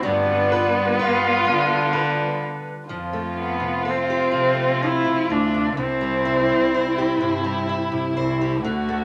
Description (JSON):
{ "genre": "acoustic folk-pop ballad", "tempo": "42 BPM (dotted quarters)", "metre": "6/8", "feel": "straight", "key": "C major", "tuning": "A4 = 441 Hz", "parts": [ { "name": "warm cello", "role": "melody", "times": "0.0-7.6 s", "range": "B3 to E4", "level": "-25 LUFS", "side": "equal", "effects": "none" }, { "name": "dark violin", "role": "second line", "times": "0.0-9.0 s", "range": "D4 to F#4", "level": "-27 LUFS", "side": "equal", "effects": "none" }, { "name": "fingerpicked steel-string acoustic guitar", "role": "accompaniment", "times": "0.0-9.0 s", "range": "C3 to C5", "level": "-29 LUFS", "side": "equal", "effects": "none" }, { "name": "hollow soft pad", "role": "sustained chords", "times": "0.0-2.9 s", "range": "G3 to B4", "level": "-32 LUFS", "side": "equal", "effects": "ensemble chorus" }, { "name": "warm cello", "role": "bass", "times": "0.0-9.0 s", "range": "C2 to D3", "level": "-29 LUFS", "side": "equal", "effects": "none" } ], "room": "moderate club reverb, RT60 0.7 s", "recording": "none", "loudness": "-21 LUFS", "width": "mono", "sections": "0.0-2.9 A section; 2.9-9.0 B section", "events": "none", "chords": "0.0 G7; 2.9 Fadd9; 5.8 C", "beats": "| 0.04 1.47 | 2.90 4.33 | 5.76 7.18 | 8.61" }